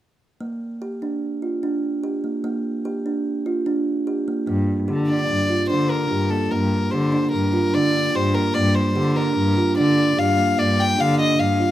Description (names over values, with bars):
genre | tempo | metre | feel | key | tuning
contemporary instrumental, contemporary | 147 BPM | 5/4 | straight | G minor | A4 = 440 Hz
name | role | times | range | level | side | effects
kalimba | arpeggios | 0.4-11.7 s | Bb3 to G4 | -22 LUFS | right 2 dB | none
warm cello | bass | 4.5-11.7 s | G2 to D3 | -22 LUFS | left 1 dB | none
clear violin | melody | 5.1-11.7 s | A4 to G5 | -22 LUFS | left 3 dB | none
room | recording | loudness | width
light reverb | close, detailed microphones | -18 LUFS | side -13 dB against mid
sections
0.4-4.5 A section; 4.5-11.7 B section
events
none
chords
0.4 Gm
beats
| 0.40 0.81 1.22 1.63 2.04 | 2.44 2.85 3.26 3.67 4.08 | 4.48 4.89 5.30 5.71 6.11 | 6.52 6.93 7.33 7.74 8.15 | 8.55 8.96 9.37 9.77 10.18 | 10.58 10.99 11.39